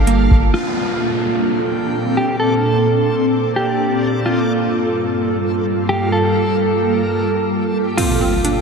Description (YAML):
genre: hip hop, atmospheric cloud-rap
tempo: 129 BPM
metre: 4/4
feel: half-time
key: Bb major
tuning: A4 = 440 Hz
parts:
  - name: mellow electric guitar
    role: melody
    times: 0.0-8.6 s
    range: F4 to A4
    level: -20 LUFS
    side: right 1 dB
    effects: spring reverb, low-pass filter, tape echo
  - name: ethereal airy pad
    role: sustained chords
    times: 0.0-8.6 s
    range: G2 to A5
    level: -18 LUFS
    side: right 1 dB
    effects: ensemble chorus, built-in reverb, sidechain pumping
  - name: hollow square pluck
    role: arpeggios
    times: 0.0-0.5, 8.0-8.6 s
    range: Bb3 to A4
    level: -26 LUFS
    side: right 6 dB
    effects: chorus, low-pass filter, tape echo
  - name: long sustained 808-style bass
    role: bass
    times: 0.0-0.5 s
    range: G1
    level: -16 LUFS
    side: equal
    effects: none
  - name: backwards swelling texture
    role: texture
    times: 0.0-8.6 s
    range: Bb3 to G5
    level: -26 LUFS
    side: left 1 dB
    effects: built-in reverb
  - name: booming analog drum machine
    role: drums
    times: 0.1-0.5, 8.0-8.6 s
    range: crash cymbal, hi-hat, kick drum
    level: -18 LUFS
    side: equal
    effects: none
  - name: downlifter and impact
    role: sound effects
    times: 0.5-4.3, 8.0-8.6 s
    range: none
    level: -24 LUFS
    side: left 1 dB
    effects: none
room: light reverb, digital ambience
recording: none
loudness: -15 LUFS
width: side -5 dB against mid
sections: 0.5-8.0 A section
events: kick muted 8.0-8.6; impact 8.0-8.6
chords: 0.0 Gm9; 0.5 Bbmaj9; 4.3 Gm9; 8.0 Bbmaj9